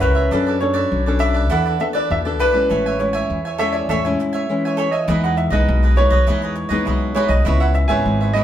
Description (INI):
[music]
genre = samba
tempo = 101 BPM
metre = 4/4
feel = straight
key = A major, E major from 5.1 s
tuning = A4 = 441 Hz
[part]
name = warm grand piano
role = melody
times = 0.0-8.4 s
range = B4 to G#5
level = -21 LUFS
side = right 1 dB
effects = none
[part]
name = cavaquinho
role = accompaniment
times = 0.0-8.4 s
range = D4 to G#5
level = -24 LUFS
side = right 5 dB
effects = none
[part]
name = nylon-string guitar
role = accompaniment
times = 0.0-8.4 s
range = G#2 to A#4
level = -22 LUFS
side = left 2 dB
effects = none
[part]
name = upright bass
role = bass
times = 0.0-8.4 s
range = G#1 to F#2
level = -19 LUFS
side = equal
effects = none
[sound]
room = wet studio reverb, RT60 0.6 s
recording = band playing live in one room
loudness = -16 LUFS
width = side -11 dB against mid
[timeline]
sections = 0.0-5.1 A section; 5.1-8.4 B section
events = none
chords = 0.3 Bm9/F#; 1.5 E7sus4; 2.7 Amaj7; 5.1 Emaj7; 7.5 C#m7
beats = | 0.33 0.92 1.52 2.11 | 2.71 3.30 3.90 4.49 | 5.09 5.68 6.28 6.87 | 7.46 8.06